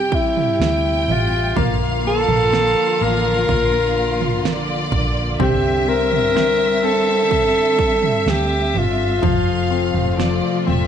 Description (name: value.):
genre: pop ballad.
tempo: 62 BPM.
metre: 4/4.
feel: straight.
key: unclear.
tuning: A4 = 444 Hz.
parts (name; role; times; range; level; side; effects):
mellow alto saxophone; melody; 0.0-10.7 s; E4 to Bb4; -19 LUFS; equal; tape echo.
clear studio violin section; second line; 0.0-10.9 s; D5 to G5; -25 LUFS; left 1 dB; none.
clear baby grand piano; accompaniment; 0.0-10.9 s; F3 to C4; -26 LUFS; left 13 dB; none.
warm studio string section; sustained chords; 0.0-10.9 s; C3 to E5; -24 LUFS; equal; none.
vintage muted fingered electric bass; bass; 0.0-10.9 s; E1 to D2; -23 LUFS; equal; none.
pop drum kit; drums; 0.1-10.9 s; kick drum, snare drum, toms; -23 LUFS; right 4 dB; none.
room: light reverb, small room ambience.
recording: 1960s-style stereo.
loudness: -15 LUFS.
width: side -8 dB against mid.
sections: 0.0-10.9 A section.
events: none.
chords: 0.0 C; 1.6 Bb; 5.4 Cadd9; 9.2 F.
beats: 0.60 | 1.56 2.53 3.49 4.44 | 5.40 6.35 7.30 8.26 | 9.22 10.19.